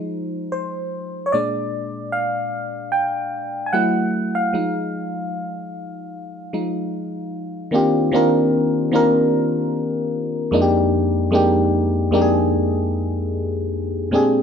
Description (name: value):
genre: R&B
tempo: 75 BPM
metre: 4/4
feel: swing 57% on 16ths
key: F dorian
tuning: A4 = 443 Hz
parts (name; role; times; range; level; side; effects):
- FM electric piano; solo; 0.0-14.4 s; F2 to Ab5; -18 LUFS; equal; chorus
room: moderate studio reverb, RT60 0.6 s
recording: band playing live in one room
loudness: -18 LUFS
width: side -7 dB against mid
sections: 0.0-7.7 A section; 7.7-14.4 A section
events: FM electric piano solo 0.0-7.7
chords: 0.0 Fm7; 1.3 Bb6; 3.7 Gbm7; 4.5 Fm7; 7.7 Ebmaj9; 10.5 Fm11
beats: 0.52 | 1.32 2.12 2.92 3.72 | 4.52 5.32 6.12 6.92 | 7.72 8.52 9.32 10.12 | 10.92 11.72 12.52 13.32 | 14.12